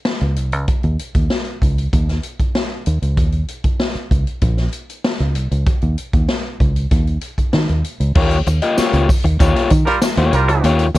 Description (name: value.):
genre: funk.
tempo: 96 BPM.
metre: 4/4.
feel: straight.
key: Eb mixolydian.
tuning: A4 = 439 Hz.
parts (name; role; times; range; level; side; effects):
swinging big-band drum kit; drums; 0.1-11.0 s; crash cymbal, hi-hat, kick drum, snare drum; -18 LUFS; equal; none.
fingered electric bass; bass; 0.2-11.0 s; Bb1 to Eb3; -16 LUFS; equal; none.
crunchy overdriven guitar; accompaniment; 8.2-11.0 s; Bb3 to Eb5; -17 LUFS; left 4 dB; none.
tambourine; percussion; 8.5-11.0 s; none; -32 LUFS; left 2 dB; none.
warm horn section; second line; 9.9-10.7 s; G3 to Bb4; -17 LUFS; right 3 dB; none.
room: little or no reverb.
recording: none.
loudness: -15 LUFS.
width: side -17 dB against mid.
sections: 0.0-8.2 A section; 8.2-11.0 B section.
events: none.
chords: 0.0 Eb5; 8.2 Eb9.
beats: 0.06 | 0.68 1.30 1.93 2.55 | 3.17 3.80 4.42 5.04 | 5.67 6.29 6.91 7.53 | 8.16 8.78 9.40 10.02 | 10.64.